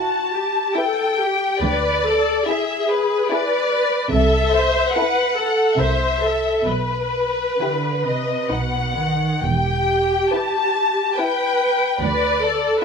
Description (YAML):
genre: classical, slow romantic movement for string orchestra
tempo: 64-75 BPM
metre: 3/4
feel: rubato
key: E minor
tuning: A4 = 440 Hz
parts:
  - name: rich studio violin section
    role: melody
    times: 0.0-12.8 s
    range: B4 to A5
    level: -21 LUFS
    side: left 4 dB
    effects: none
  - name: warm studio violin section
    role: second line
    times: 0.0-12.8 s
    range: D#4 to B4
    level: -28 LUFS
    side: left 3 dB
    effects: none
  - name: warm studio viola section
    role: accompaniment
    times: 0.0-12.8 s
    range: F#4 to C5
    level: -21 LUFS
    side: equal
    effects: none
  - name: warm studio cello section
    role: bass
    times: 1.6-12.7 s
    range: D2 to D#3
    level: -26 LUFS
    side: right 3 dB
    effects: none
  - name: warm studio double bass section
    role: bass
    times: 1.6-12.7 s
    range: E1 to D2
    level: -25 LUFS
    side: right 3 dB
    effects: none
room: moderate recital hall reverb, RT60 1.5 s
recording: close, detailed microphones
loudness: -17 LUFS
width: side -6 dB against mid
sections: 0.0-12.8 A section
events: none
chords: 0.0 Em; 1.6 E7/D; 4.1 Am/C; 5.8 C7; 6.7 Em/B; 8.5 B; 9.4 Em; 12.0 E7(no3)/D (rootless)